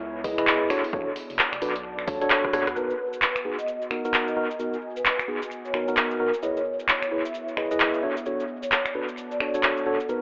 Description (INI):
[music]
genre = UK garage, two-step garage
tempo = 131 BPM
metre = 4/4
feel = swing 61% on 16ths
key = G# minor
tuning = A4 = 439 Hz
[part]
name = soft dub sub bass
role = bass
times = 0.0-2.8 s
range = F#1 to E2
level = -45 LUFS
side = equal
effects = none
[part]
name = warbly tape-like pad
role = texture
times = 0.0-10.2 s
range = B3 to A5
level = -36 LUFS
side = equal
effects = chorus, built-in reverb, sidechain pumping
[part]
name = mellow tine electric piano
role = stabs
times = 0.2-10.2 s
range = B3 to D#5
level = -27 LUFS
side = equal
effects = medium stereo tremolo, dub echo
[part]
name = electronic kick drum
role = drums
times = 0.2-2.5 s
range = none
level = -34 LUFS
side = equal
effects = none
[part]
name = punchy analog drum machine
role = drums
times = 0.2-10.2 s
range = cabasa, finger snaps, handclaps, hi-hat, rim click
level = -25 LUFS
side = equal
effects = analog delay
[part]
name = vibraphone with soft mallets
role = melody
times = 2.8-10.2 s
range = A4 to E5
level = -30 LUFS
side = equal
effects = dub echo
[sound]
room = moderate spring reverb, RT60 2.0 s, digital ambience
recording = echo-heavy mix, telephone sound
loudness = -22 LUFS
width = side -33 dB against mid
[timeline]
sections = 0.0-2.8 A section; 2.8-10.2 B section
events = drum fill 2.3-2.8; band accent 2.6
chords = 0.0 C#m7; 0.7 Bm7; 2.8 G#m7; 6.4 C#m7; 8.0 Bm7